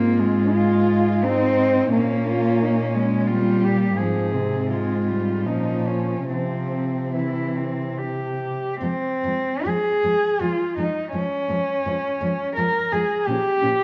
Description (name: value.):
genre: classical, lyrical piece for cello ensemble.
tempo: 68-89 BPM.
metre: 3/4.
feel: rubato.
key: F minor.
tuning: A4 = 440 Hz.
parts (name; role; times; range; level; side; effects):
warm cello; melody; 0.0-13.8 s; C4 to Bb4; -26 LUFS; equal; none.
dark cello; second line; 0.0-13.7 s; Ab3 to F4; -31 LUFS; equal; none.
warm cello; accompaniment; 0.0-13.7 s; C3 to C4; -25 LUFS; equal; none.
dark cello; bass; 0.0-13.7 s; F2 to C3; -29 LUFS; equal; none.
room: wet scoring stage reverb, RT60 1.7 s.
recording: worn, warbling old tape, cassette tape, warbly pitch drift, nothing above 7.6 kHz.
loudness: -22 LUFS.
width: mono.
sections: 0.0-8.8 A section; 8.8-13.8 B section.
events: none.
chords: 0.0 Fm/Ab; 1.9 Gdim/Bb; 4.0 Fm/Ab; 5.5 Bbmadd11; 6.3 C; 8.8 Fm; 13.3 Bbm.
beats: 0.53 1.23 | 1.92 2.60 3.29 | 3.99 4.70 5.46 | 6.29 7.15 7.98 | 8.82 9.66 10.41 | 11.13 11.85 12.57 | 13.28.